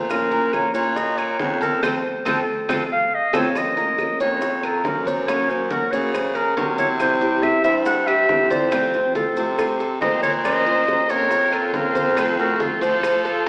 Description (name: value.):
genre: latin, Cuban son and guajira.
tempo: 139 BPM.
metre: 4/4.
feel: straight.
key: Bb harmonic minor.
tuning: A4 = 437 Hz.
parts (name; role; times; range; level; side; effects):
breathy clarinet; melody; 0.0-13.5 s; A4 to Gb5; -21 LUFS; equal; none.
nylon-string guitar; accompaniment; 0.0-13.5 s; C3 to C5; -28 LUFS; equal; none.
Cuban tres; arpeggios; 0.0-13.5 s; C4 to Db5; -25 LUFS; equal; none.
raspy baritone saxophone; bass; 0.0-13.5 s; F2 to F3; -25 LUFS; equal; none.
bongos; percussion; 0.1-13.5 s; none; -31 LUFS; equal; none.
claves; percussion; 0.1-13.3 s; none; -35 LUFS; equal; none.
congas; percussion; 0.1-13.5 s; none; -37 LUFS; equal; none.
maracas; percussion; 0.1-13.5 s; none; -48 LUFS; right 1 dB; none.
clear studio violin section; second line; 9.6-13.5 s; F4 to C5; -28 LUFS; equal; none.
room: wet recital hall reverb, RT60 1.6 s.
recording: recorded in a church or concert hall, AM radio sound.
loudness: -17 LUFS.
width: side -31 dB against mid.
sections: 0.0-3.6 A section; 3.6-13.5 A section.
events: band accent 1.8-3.6; drum fill 3.1-3.6.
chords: 0.1 Bbm; 1.8 F; 3.6 Bbm; 5.3 Gb; 7.0 C; 8.7 F; 10.4 Bbmadd9; 12.2 F.